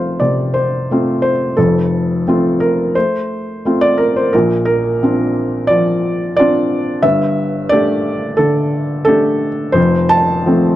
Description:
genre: neoclassical minimalist piano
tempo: 88 BPM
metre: 4/4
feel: rubato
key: F major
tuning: A4 = 439 Hz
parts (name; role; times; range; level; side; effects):
- felt-muted upright piano; solo; 0.0-10.8 s; F1 to A5; -12 LUFS; equal; none
room: studio ambience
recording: dry, close 1970s-style studio recording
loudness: -12 LUFS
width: side -14 dB against mid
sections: 0.0-10.8 A section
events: none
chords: 0.0 F; 4.3 Bbadd9; 7.0 Gsus2; 9.8 F

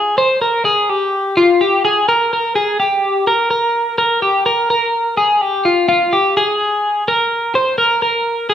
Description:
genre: indie pop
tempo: 126 BPM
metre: 4/4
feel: straight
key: unclear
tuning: A4 = 440 Hz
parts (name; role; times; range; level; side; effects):
- twelve-string electric guitar; solo; 0.0-8.5 s; F4 to C5; -13 LUFS; equal; warbly pitch drift
room: wet large studio reverb, RT60 1.2 s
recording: band playing live in one room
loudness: -13 LUFS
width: side -10 dB against mid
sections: 0.0-4.0 A section; 4.0-5.9 B section; 5.9-8.5 C section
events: none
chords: none

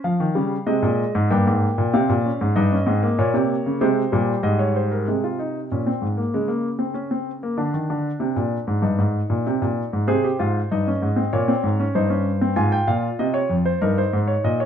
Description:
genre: classical, baroque-style 3-part fugue for grand piano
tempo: 96 BPM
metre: 4/4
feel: straight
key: unclear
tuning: A4 = 441 Hz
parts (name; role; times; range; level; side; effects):
- warm grand piano; solo; 0.0-14.7 s; F2 to Ab5; -19 LUFS; equal; none
room: moderate stone room reverb, RT60 1.0 s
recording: dark, warm production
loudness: -19 LUFS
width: side -8 dB against mid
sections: 0.0-5.1 A section; 5.1-14.7 B section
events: none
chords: 0.1 Ab; 1.3 Bbm13/G; 2.6 Eb7/G; 3.8 Ab; 5.1 Ab/C; 6.3 Db5; 7.6 Bb7/D; 8.8 Eb5; 10.1 Ab; 11.3 Gdim; 12.6 Fm/Ab; 13.8 Eb/G

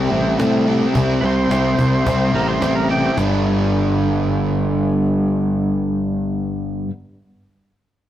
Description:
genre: classic rock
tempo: 108 BPM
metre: 4/4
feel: straight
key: G major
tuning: A4 = 440 Hz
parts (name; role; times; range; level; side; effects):
- overdriven tonewheel organ; melody; 0.0-3.2 s; G3 to C5; -23 LUFS; right 2 dB; none
- crunchy overdriven guitar; riff; 0.0-6.9 s; C3 to B4; -22 LUFS; right 5 dB; none
- overdriven semi-hollow guitar; riff; 0.0-6.9 s; G2 to E4; -20 LUFS; left 3 dB; none
- growling fingered electric bass; bass; 0.0-6.9 s; G1 to A2; -21 LUFS; equal; overdrive
- cajon; drums; 0.4-3.3 s; none; -23 LUFS; equal; none
room: moderate stone room reverb, RT60 1.3 s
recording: rough rehearsal-room recording, tube saturation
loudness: -16 LUFS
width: side -12 dB against mid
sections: 0.0-3.2 A section; 3.2-5.4 B section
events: tonewheel organ solo 0.0-3.2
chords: 0.0 C; 3.2 G

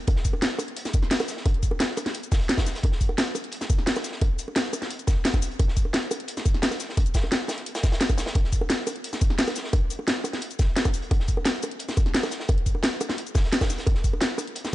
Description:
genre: drum and bass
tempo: 174 BPM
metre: 4/4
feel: straight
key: none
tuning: none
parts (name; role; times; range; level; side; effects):
- crunchy breakbeat drum kit; drums; 0.1-14.7 s; hi-hat, snare drum; -34 LUFS; equal; high-pass filter on hats, high-pass filter on snare, high-pass filter on room
- drum and bass drum kit; drums; 0.1-14.7 s; cabasa, hi-hat, snare drum; -27 LUFS; equal; none
- electronic kick drum; drums; 0.1-14.1 s; none; -22 LUFS; equal; none
- bongos; percussion; 0.1-14.5 s; none; -34 LUFS; right 1 dB; none
room: studio reverb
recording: dark, warm production, nothing above 10.3 kHz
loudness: -22 LUFS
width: side -16 dB against mid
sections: 0.0-14.7 A section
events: none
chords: none

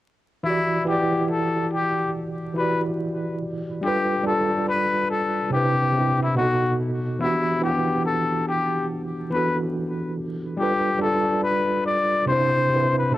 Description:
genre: hip hop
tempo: 71 BPM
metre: 4/4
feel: swing 65% on 16ths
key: E minor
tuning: A4 = 440 Hz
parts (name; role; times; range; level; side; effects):
- tine electric piano; accompaniment; 0.4-13.2 s; B2 to F#5; -23 LUFS; right 1 dB; overdrive, fast stereo tremolo, low-pass filter, cassette tape
- trumpet with straight mute; melody; 0.5-13.2 s; E4 to D5; -23 LUFS; left 3 dB; low-pass filter, plate reverb
room: moderate booth ambience, RT60 0.2 s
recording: home recording on cassette, vinyl crackle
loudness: -20 LUFS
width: side -15 dB against mid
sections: 0.5-13.2 A section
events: none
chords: 0.5 Em7; 3.8 G7; 5.5 Cmaj7; 6.4 B7; 7.2 Em7; 10.6 G7; 12.3 Cmaj7

